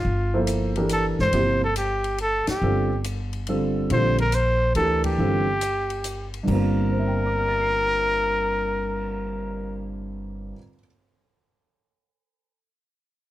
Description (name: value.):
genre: modal jazz.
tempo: 140 BPM.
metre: 3/4.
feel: swing 67% on 8ths.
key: G dorian.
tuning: A4 = 442 Hz.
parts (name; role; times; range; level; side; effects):
warm trumpet; melody; 0.0-9.8 s; F4 to C5; -24 LUFS; equal; plate reverb.
upright bass; bass; 0.0-10.5 s; G1 to D2; -27 LUFS; equal; none.
warm baby grand piano; accompaniment; 0.3-10.9 s; G2 to C7; -26 LUFS; right 1 dB; none.
compact cocktail drum kit; drums; 0.5-9.0 s; crash cymbal, cymbal swell, hi-hat, kick drum, ride cymbal, snare drum; -36 LUFS; left 2 dB; none.
room: moderate club reverb, RT60 0.6 s.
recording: none.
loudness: -21 LUFS.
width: side -14 dB against mid.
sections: 0.0-6.5 A section; 6.5-9.1 B section.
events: band accent 2.4, 5.0.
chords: 0.0 Gm11.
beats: | 0.05 0.48 0.91 | 1.33 1.76 2.19 | 2.62 3.05 3.48 | 3.91 4.34 4.76 | 5.19 5.62 6.05 | 6.48 6.91 7.34 | 7.76 8.19 8.62.